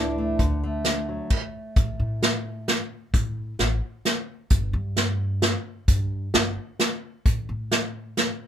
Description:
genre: indie folk with a building arrangement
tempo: 131 BPM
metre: 3/4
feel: straight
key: unclear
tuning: A4 = 440 Hz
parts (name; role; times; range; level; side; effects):
- fingerpicked acoustic archtop guitar; accompaniment; 0.0-2.7 s; A2 to E4; -29 LUFS; equal; none
- upright bass; bass; 0.0-8.3 s; G1 to A2; -28 LUFS; equal; none
- unplugged drum kit; drums; 0.4-8.3 s; crash cymbal, hi-hat, kick drum, snare drum; -22 LUFS; equal; none
room: moderate small room reverb, RT60 0.5 s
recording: band playing live in one room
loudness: -23 LUFS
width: side -10 dB against mid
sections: 0.0-1.8 A section; 1.8-8.5 B section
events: none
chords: 0.4 D; 1.8 N.C.

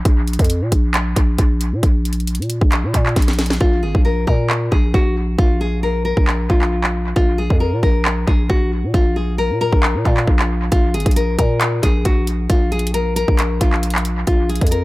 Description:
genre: hip hop, trap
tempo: 135 BPM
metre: 4/4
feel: half-time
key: unclear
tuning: A4 = 441 Hz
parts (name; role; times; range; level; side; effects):
- growling 808-style bass; bass; 0.0-14.8 s; Ab1 to Bb2; -19 LUFS; equal; none
- trap drum kit; drums; 0.1-14.8 s; handclaps, hi-hat, kick drum, snare drum; -17 LUFS; equal; dub echo
- nylon-string guitar; melody; 3.6-14.8 s; F4 to Bb4; -21 LUFS; left 2 dB; dub echo
room: little or no reverb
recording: echo-heavy mix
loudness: -14 LUFS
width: side -19 dB against mid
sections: 0.0-14.8 A section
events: break 0.0-3.6; drum fill 3.2-3.6; hi-hats muted 3.6-10.7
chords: 0.1 Bb5

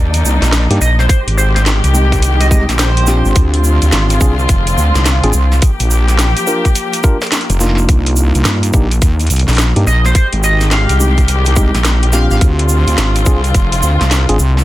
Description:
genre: glitch hop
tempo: 106 BPM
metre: 4/4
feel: swing 63% on 16ths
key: C minor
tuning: A4 = 440 Hz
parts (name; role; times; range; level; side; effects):
- muted chamber string section; sustained chords; 0.0-14.6 s; D3 to G4; -20 LUFS; left 2 dB; sidechain pumping
- wobble bass; bass; 0.0-14.6 s; F1 to G2; -12 LUFS; equal; chorus
- drum and bass drum kit; drums; 0.1-14.6 s; hi-hat, snare drum; -17 LUFS; equal; none
- tube shaker; percussion; 0.1-14.6 s; none; -24 LUFS; right 3 dB; none
- mellow tine electric piano; stabs; 0.7-14.4 s; Ab3 to Bb4; -20 LUFS; equal; sidechain pumping, dub echo
- sync lead; melody; 0.8-3.4, 9.9-12.4 s; C5 to F5; -20 LUFS; right 1 dB; lush chorus, dub echo
- electronic kick drum; drums; 1.1-13.7 s; none; -12 LUFS; equal; none
room: little or no reverb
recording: dense, heavily limited modern master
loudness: -10 LUFS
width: side -15 dB against mid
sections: 0.0-14.6 A section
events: none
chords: 0.0 Cm9; 1.1 Fm9; 3.4 Dm7b5; 5.6 Gm7; 7.9 Cm9; 10.2 Fm9; 12.4 Dm7b5

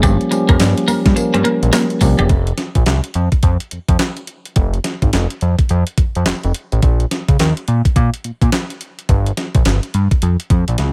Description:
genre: R&B, new jack swing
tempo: 106 BPM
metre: 4/4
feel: swing 62% on 16ths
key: unclear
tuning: A4 = 445 Hz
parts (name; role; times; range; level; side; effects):
- mellow tine electric piano; accompaniment; 0.0-2.3 s; F3 to Bb4; -19 LUFS; equal; none
- twelve-string electric guitar; riff; 0.0-2.3 s; G3 to C4; -23 LUFS; equal; analog chorus
- fat analog bass; bass; 0.0-10.9 s; E1 to Bb2; -18 LUFS; equal; none
- crisp 8-bit digital drum machine; drums; 0.0-10.9 s; handclaps, hi-hat, kick drum, snare drum, tambourine; -18 LUFS; equal; none
room: digital ambience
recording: none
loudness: -16 LUFS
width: mono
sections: 0.0-2.3 A section; 2.3-10.9 B section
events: none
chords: 0.0 Gm7b5; 2.3 N.C.; 9.1 Gm7b5

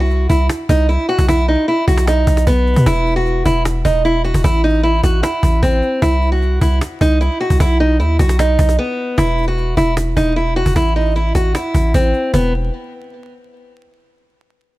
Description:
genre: hip hop, trap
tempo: 152 BPM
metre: 4/4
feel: half-time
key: unclear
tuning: A4 = 440 Hz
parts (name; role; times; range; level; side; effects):
- picked acoustic archtop guitar; melody; 0.0-12.5 s; B3 to F#4; -17 LUFS; right 1 dB; low-pass filter
- long sustained 808-style bass; bass; 0.0-12.7 s; E1 to B2; -15 LUFS; equal; none
- cajon; drums; 0.0-12.4 s; none; -21 LUFS; equal; none
room: small room ambience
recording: vinyl crackle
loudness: -13 LUFS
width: side -18 dB against mid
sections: 0.0-9.2 A section; 9.2-12.3 B section; 12.3-13.9 C section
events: break 8.8-9.2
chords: 0.0 C(#11); 1.3 B; 2.9 Esus2; 4.4 Am; 6.0 C(b5, no3); 7.6 B; 9.2 Esus2; 10.8 Am; 12.3 E5

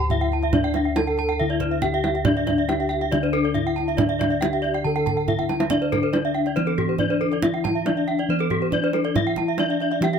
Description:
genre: Balinese gamelan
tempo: 139 BPM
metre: 4/4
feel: straight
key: D slendro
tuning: A4 = 440 Hz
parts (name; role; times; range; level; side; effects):
- gamelan-type bronze metallophone; melody; 0.0-10.2 s; C4-45c to A4+25c; -25 LUFS; left 4 dB; none
- gamelan-type bronze metallophone; arpeggios; 0.0-10.2 s; A4+25c to G5-35c; -27 LUFS; right 8 dB; none
- gamelan-type bossed gongs; bass; 0.0-10.2 s; D2 to E4+30c; -26 LUFS; equal; none
- gamelan-type bronze metallophone; arpeggios; 0.1-10.1 s; G4-35c to A5+25c; -27 LUFS; left 4 dB; none
- kendang; percussion; 0.1-10.2 s; none; -27 LUFS; right 3 dB; none
room: moderate spring reverb, RT60 1.2 s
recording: none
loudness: -20 LUFS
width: side -7 dB against mid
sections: 0.0-10.2 A section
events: drum fill 5.4-5.7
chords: none

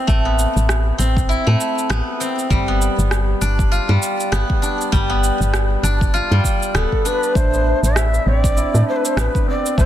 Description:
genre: organic downtempo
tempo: 99 BPM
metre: 4/4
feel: swing 58% on 16ths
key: A minor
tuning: A4 = 440 Hz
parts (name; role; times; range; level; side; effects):
- steel-string zither; arpeggios; 0.0-9.9 s; G3 to F4; -21 LUFS; equal; low-pass filter, ping-pong delay
- woody FM bass; bass; 0.1-9.9 s; D1 to A2; -18 LUFS; equal; tube saturation, sidechain pumping
- electronic cabasa and rim click; drums; 0.1-9.9 s; none; -26 LUFS; right 2 dB; soft clipping on snare
- electronic kick drum; drums; 0.1-9.9 s; none; -19 LUFS; equal; none
- breathy mellow Native American-style cedar flute; melody; 6.8-9.9 s; A4 to E5; -21 LUFS; left 1 dB; digital delay
- quartz singing bowl; texture; 7.3-9.9 s; D4 to D5; -28 LUFS; right 5 dB; none
room: light reverb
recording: dense, heavily limited modern master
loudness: -15 LUFS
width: side -12 dB against mid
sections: 0.0-7.4 A section; 7.4-9.9 A section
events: none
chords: 0.0 Amadd9; 2.5 G7; 7.4 Amadd9

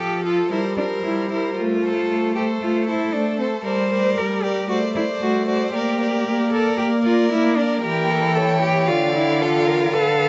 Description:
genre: quick classical-period movement for string quartet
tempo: 114 BPM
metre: 4/4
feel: rubato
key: F major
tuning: A4 = 440 Hz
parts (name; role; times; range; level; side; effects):
- warm violin; melody; 0.0-10.3 s; A4 to G5; -30 LUFS; equal; none
- rich violin; second line; 0.0-10.3 s; G4 to D5; -29 LUFS; equal; none
- rich viola; accompaniment; 0.0-10.3 s; D3 to Bb3; -25 LUFS; equal; none
- rich cello; bass; 0.0-10.3 s; C4 to C5; -24 LUFS; equal; none
room: wet cathedral reverb, RT60 5.0 s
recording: in a vast, echoing space, nothing above 7.8 kHz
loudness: -20 LUFS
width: mono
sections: 0.0-10.3 A section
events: none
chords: 0.0 F; 0.5 C7/G; 1.6 F/A; 3.7 Gm; 4.7 D7/A; 5.7 Gm/Bb; 7.8 A7/E; 8.9 Dm

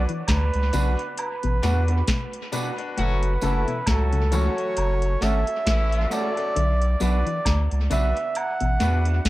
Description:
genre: roots reggae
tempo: 67 BPM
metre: 4/4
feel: swing 57% on 16ths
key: unclear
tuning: A4 = 440 Hz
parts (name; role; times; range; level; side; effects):
- warm flugelhorn; melody; 0.0-9.3 s; A4 to F#5; -28 LUFS; right 2 dB; dub echo
- bright concert grand piano; stabs; 0.0-9.1 s; C#4 to B4; -34 LUFS; left 4 dB; none
- warm sub bass; bass; 0.0-9.2 s; F#1 to E2; -22 LUFS; equal; none
- electric guitar with an envelope filter; arpeggios; 0.1-9.3 s; A2 to F#3; -31 LUFS; left 5 dB; none
- soft vintage rhythm box; drums; 0.1-9.3 s; hi-hat, kick drum, snare drum; -28 LUFS; equal; dub echo
- woodblock and tambourine; percussion; 0.3-9.0 s; none; -35 LUFS; right 3 dB; none
- electric guitar through a small old amp; accompaniment; 0.7-9.2 s; A3 to B4; -33 LUFS; right 4 dB; dub echo
- clear horn section; second line; 3.0-6.3 s; E3 to F#4; -31 LUFS; left 2 dB; dub echo
room: light reverb, small room reverb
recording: echo-heavy mix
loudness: -20 LUFS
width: side -17 dB against mid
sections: 0.0-9.3 A section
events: none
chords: 0.0 Bm; 3.0 F#m; 6.6 Bm

